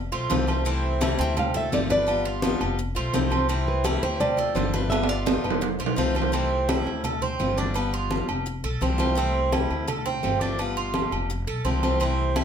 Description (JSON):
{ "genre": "latin, Cuban son and guajira", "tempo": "169 BPM", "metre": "4/4", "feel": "straight", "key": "C major", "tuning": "A4 = 440 Hz", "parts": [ { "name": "upright bass", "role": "bass", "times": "0.0-12.4 s", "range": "F1 to D2", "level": "-28 LUFS", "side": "equal", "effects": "none" }, { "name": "picked acoustic archtop guitar", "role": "accompaniment", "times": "0.1-12.4 s", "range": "C3 to F4", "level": "-31 LUFS", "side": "left 5 dB", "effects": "none" }, { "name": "Cuban tres", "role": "arpeggios", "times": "0.1-12.4 s", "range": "C4 to C5", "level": "-29 LUFS", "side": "right 6 dB", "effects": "none" }, { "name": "agogo bells and timbales", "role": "percussion", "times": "0.1-12.4 s", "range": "none", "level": "-30 LUFS", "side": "right 2 dB", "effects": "none" }, { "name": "congas", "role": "percussion", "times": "0.1-12.4 s", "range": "none", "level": "-30 LUFS", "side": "left 2 dB", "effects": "none" }, { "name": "nylon-string guitar", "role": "melody", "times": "1.0-6.1 s", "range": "B4 to G5", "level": "-27 LUFS", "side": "equal", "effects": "none" } ], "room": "moderate studio reverb, RT60 0.7 s", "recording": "none", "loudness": "-22 LUFS", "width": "side -8 dB against mid", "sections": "0.0-6.3 A section; 6.3-12.4 B section", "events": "drum fill 4.9-6.3", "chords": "0.0 Fmaj7; 0.7 C6; 1.4 Dm7; 2.1 G7; 2.8 Fmaj7; 3.5 C6; 4.2 Dm7; 4.9 G7; 5.6 Fmaj7; 6.3 C6; 7.0 Dm7; 7.8 G7; 8.5 Fmaj7; 9.2 C6; 9.9 Dm7; 10.6 G7; 11.3 Fmaj7", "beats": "0.30 | 0.66 1.01 1.37 1.72 | 2.08 2.43 2.78 3.14 | 3.49 3.85 4.20 4.56 | 4.91 5.27 5.62 5.98 | 6.33 6.69 7.04 7.40 | 7.75 8.11 8.46 8.82 | 9.17 9.53 9.88 10.23 | 10.59 10.94 11.30 11.65 | 12.01 12.36" }